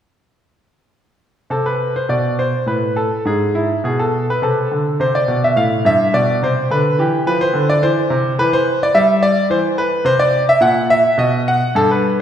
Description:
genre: classical, baroque-style suite movement for grand piano.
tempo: 106 BPM.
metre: 3/4.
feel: rubato.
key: A minor.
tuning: A4 = 439 Hz.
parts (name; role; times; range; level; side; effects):
bright concert grand piano; solo; 1.5-12.2 s; G2 to F#5; -14 LUFS; equal; none.
room: wet scoring stage reverb, RT60 1.7 s.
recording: heard from further back in the room.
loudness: -14 LUFS.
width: side -9 dB against mid.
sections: 1.5-12.2 A section.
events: none.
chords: 1.5 Am; 3.2 G#m; 4.4 Am/C; 5.0 C5; 6.7 Dm13; 7.8 C/E; 8.4 Em; 9.5 N.C.; 10.1 A#add9; 11.2 N.C..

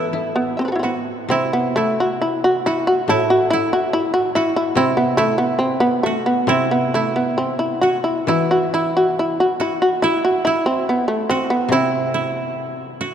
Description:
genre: japanese traditional, Japanese chamber music.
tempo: 63-73 BPM.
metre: 2/4.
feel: rubato.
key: unclear.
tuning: A4 = 440 Hz.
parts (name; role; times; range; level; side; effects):
shamisen; melody; 0.0-13.1 s; A3 to E5; -18 LUFS; equal; none.
koto; second line; 0.0-13.1 s; E4 to F#4; -23 LUFS; right 4 dB; none.
koto; accompaniment; 0.0-13.1 s; A2 to E4; -27 LUFS; left 5 dB; none.
room: wet cathedral reverb, RT60 5.2 s.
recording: dark, warm production.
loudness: -16 LUFS.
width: side -9 dB against mid.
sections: 0.0-1.3 A section; 1.3-13.1 B section.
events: none.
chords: none.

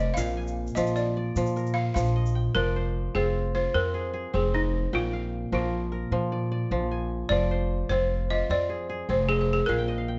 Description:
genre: west african traditional, West African string and xylophone music.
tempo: 101 BPM (dotted quarters).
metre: 12/8.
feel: straight.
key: F dorian.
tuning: A4 = 440 Hz.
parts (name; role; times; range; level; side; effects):
balafon; melody; 0.0-10.2 s; Eb4 to F5; -31 LUFS; equal; none.
kora; arpeggios; 0.0-10.2 s; Bb2 to Ab5; -33 LUFS; equal; none.
upright bass; bass; 0.0-10.2 s; F1 to Bb2; -31 LUFS; equal; none.
egg shaker; percussion; 0.2-2.3 s; none; -48 LUFS; equal; none.
room: light reverb.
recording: nothing above 7.8 kHz.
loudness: -27 LUFS.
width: mono.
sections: 0.0-2.6 A section; 2.6-10.2 B section.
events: balafon solo 0.0-2.6; kora fill 9.7-10.2.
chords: 0.2 Bb; 2.6 Fm; 4.9 Bb; 7.3 Fm; 9.7 Bb5.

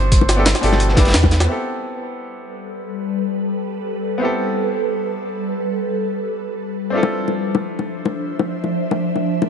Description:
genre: liquid drum and bass.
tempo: 176 BPM.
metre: 4/4.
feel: swing 53% on 16ths.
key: unclear.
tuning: A4 = 439 Hz.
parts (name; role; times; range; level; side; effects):
trumpet with plunger mute; melody; 0.0-1.1 s; C5; -28 LUFS; right 2 dB; digital delay.
bright grand piano; accompaniment; 0.0-9.5 s; B2 to B4; -24 LUFS; equal; low-pass filter, tape echo.
warm sub bass; bass; 0.0-1.5 s; G1 to E2; -17 LUFS; equal; tube saturation.
crunchy breakbeat drum kit; drums; 0.1-1.5 s; hi-hat, snare drum; -25 LUFS; equal; high-pass filter on hats, high-pass filter on snare, high-pass filter on room.
electronic kick drum; drums; 0.1-1.3 s; none; -15 LUFS; equal; overdrive.
jungle sampler-style drum kit; drums; 0.1-1.6 s; crash cymbal, hi-hat, snare drum; -20 LUFS; equal; overdrive, low-pass filter on hats, low-pass filter on snare, low-pass filter on cymbals, low-pass filter on room.
bongos; percussion; 0.2-1.3, 7.0-9.5 s; none; -23 LUFS; left 6 dB; none.
ethereal airy pad; sustained chords; 2.5-9.5 s; F3 to E5; -22 LUFS; equal; ensemble chorus, built-in reverb, phaser, sidechain pumping.
room: light reverb.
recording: nothing above 10.8 kHz.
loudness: -17 LUFS.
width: side -7 dB against mid.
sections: 0.0-1.5 A section; 1.5-9.5 B section.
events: drop 0.0-1.5.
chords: 0.0 Cmaj13; 1.5 Am9; 6.9 Dm9.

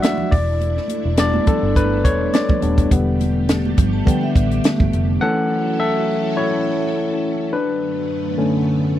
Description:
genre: lush 1970s-style soul.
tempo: 104 BPM.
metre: 4/4.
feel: swing 54% on 16ths.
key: unclear.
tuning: A4 = 443 Hz.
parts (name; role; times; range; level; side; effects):
barky tine electric piano; accompaniment; 0.0-9.0 s; D3 to F#5; -19 LUFS; left 2 dB; overdrive, tube saturation.
string machine, full ensemble; sustained chords; 0.0-9.0 s; F#2 to A4; -26 LUFS; right 2 dB; phaser, ensemble chorus.
compact cocktail drum kit; drums; 0.0-5.1 s; hi-hat, kick drum, snare drum; -16 LUFS; equal; none.
congas; percussion; 0.0-4.9 s; none; -27 LUFS; right 7 dB; none.
vintage muted fingered electric bass; bass; 0.3-5.2 s; Eb1 to A1; -21 LUFS; equal; none.
vibraphone with hard mallets; texture; 3.9-5.1 s; E5 to A5; -31 LUFS; right 6 dB; none.
room: studio ambience.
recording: dry, close 1970s-style studio recording.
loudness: -16 LUFS.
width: side -12 dB against mid.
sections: 0.0-2.9 A section; 2.9-5.2 B section; 5.2-9.0 C section.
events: tine electric piano solo 0.0-2.9, 2.9-5.2, 5.2-9.0.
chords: 0.3 A7sus4/E; 5.2 F#m7; 7.5 Bm9/F#.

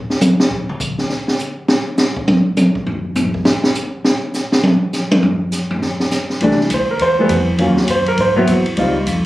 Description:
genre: jazz piano trio.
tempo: 203 BPM.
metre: 4/4.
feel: swing 62% on 8ths.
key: unclear.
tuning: A4 = 440 Hz.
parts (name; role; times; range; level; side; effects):
open jazz drum kit; drums; 0.1-9.2 s; hi-hat, kick drum, ride cymbal, snare drum, toms; -16 LUFS; equal; none.
warm grand piano; melody; 6.4-8.9 s; E3 to C5; -14 LUFS; equal; none.
upright bass; bass; 6.4-9.3 s; C2 to Ab2; -19 LUFS; equal; none.
room: wet studio reverb, RT60 0.6 s.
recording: recorded on a phone in the room, club reverb.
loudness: -14 LUFS.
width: side -16 dB against mid.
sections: 0.0-6.4 A section; 6.4-9.3 B section.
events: drum solo 0.0-6.4.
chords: 0.0 N.C.; 6.4 C6; 7.6 Ebm7; 8.2 Abaug.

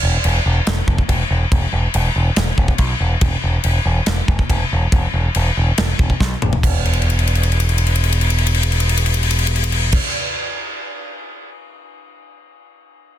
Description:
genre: heavy metal.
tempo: 141 BPM.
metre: 4/4.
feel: straight.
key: unclear.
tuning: A4 = 442 Hz.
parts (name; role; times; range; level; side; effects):
growling picked electric bass; bass; 0.0-10.0 s; E1 to B1; -17 LUFS; equal; overdrive.
modern studio drum kit; drums; 0.2-11.5 s; crash cymbal, kick drum, ride cymbal, snare drum, toms; -18 LUFS; left 1 dB; none.
room: little or no reverb.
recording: dense, heavily limited modern master.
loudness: -15 LUFS.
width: side -11 dB against mid.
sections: 0.0-6.6 A section; 6.6-10.0 B section.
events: drum fill 6.2-6.6, 6.8-9.9.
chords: none.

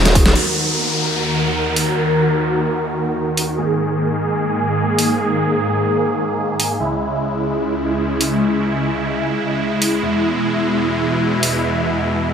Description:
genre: heavy wobble dubstep.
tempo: 149 BPM.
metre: 4/4.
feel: half-time.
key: Eb phrygian.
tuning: A4 = 440 Hz.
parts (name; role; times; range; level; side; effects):
supersaw chords; sustained chords; 0.0-12.3 s; Db2 to Bb4; -17 LUFS; equal; phaser, sidechain pumping, low-pass filter.
dubstep drum kit; drums; 0.1-11.5 s; crash cymbal, hi-hat, snare drum; -18 LUFS; equal; overdrive.
downlifter; sound effects; 0.4-3.6 s; none; -22 LUFS; equal; none.
room: moderate lush hall reverb, RT60 1.6 s.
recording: none.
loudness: -16 LUFS.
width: side -7 dB against mid.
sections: 0.4-12.3 A section.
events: drum fill 0.0-0.4; band accent 0.3; filter sweep on supersaw synth 0.4-12.3.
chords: 0.4 Ebm; 3.6 Absus2; 6.8 Dbm; 10.0 E.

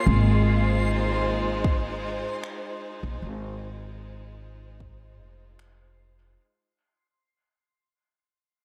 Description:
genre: ambient dub.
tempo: 76 BPM.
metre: 4/4.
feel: straight.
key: unclear.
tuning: A4 = 440 Hz.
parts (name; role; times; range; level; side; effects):
clear studio string section; sustained chords; 0.0-6.4 s; Ab3 to C5; -33 LUFS; equal; none.
backwards swelling texture; texture; 0.0-6.4 s; C6; -36 LUFS; equal; built-in reverb.
upright bass; bass; 0.1-6.3 s; F1 to Bb1; -27 LUFS; equal; none.
electronic kick drum; drums; 1.6-5.0 s; none; -27 LUFS; equal; overdrive.
finger snaps; drums; 2.4-5.8 s; none; -48 LUFS; equal; none.
room: light reverb.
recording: echo-heavy mix.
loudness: -26 LUFS.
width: mono.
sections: 0.0-6.4 A section.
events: fade-out 0.0-6.4.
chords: 0.1 Ab6.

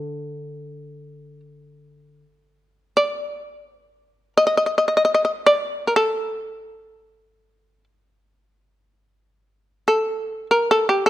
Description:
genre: japanese traditional, Japanese chamber music.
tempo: free time.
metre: none.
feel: none.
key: D miyako bushi.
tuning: A4 = 441 Hz.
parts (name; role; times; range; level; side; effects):
shamisen; melody; 0.0-11.1 s; D4 to Eb5; -17 LUFS; equal; none.
koto; accompaniment; 0.0-2.2 s; D3; -36 LUFS; left 1 dB; none.
room: light reverb.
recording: close, detailed microphones.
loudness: -18 LUFS.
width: side -14 dB against mid.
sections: 0.0-2.1 A section; 2.1-11.1 A section.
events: none.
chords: none.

